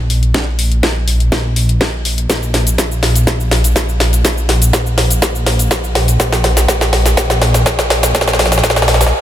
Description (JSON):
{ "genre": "progressive house", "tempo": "123 BPM", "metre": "4/4", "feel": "straight", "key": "unclear", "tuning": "A4 = 440 Hz", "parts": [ { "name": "dark detuned saw bass", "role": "bass", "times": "0.0-9.1 s", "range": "Bb1", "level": "-14 LUFS", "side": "equal", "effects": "tube saturation, sidechain pumping" }, { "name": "house drum kit", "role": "drums", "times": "0.1-9.2 s", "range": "hi-hat, shaker, snare drum", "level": "-14 LUFS", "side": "equal", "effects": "high-pass filter on snare, high-pass filter on hats, high-pass filter on perc, high-pass filter on room" }, { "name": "electronic kick drum", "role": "drums", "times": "0.3-8.7 s", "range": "none", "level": "-22 LUFS", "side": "equal", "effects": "high-pass filter on kick" } ], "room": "moderate concert hall reverb, RT60 2.2 s", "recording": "none", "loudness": "-11 LUFS", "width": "side -11 dB against mid", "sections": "0.0-9.2 A section", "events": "build-up 0.0-9.2; drum fill 0.0-9.1", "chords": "none" }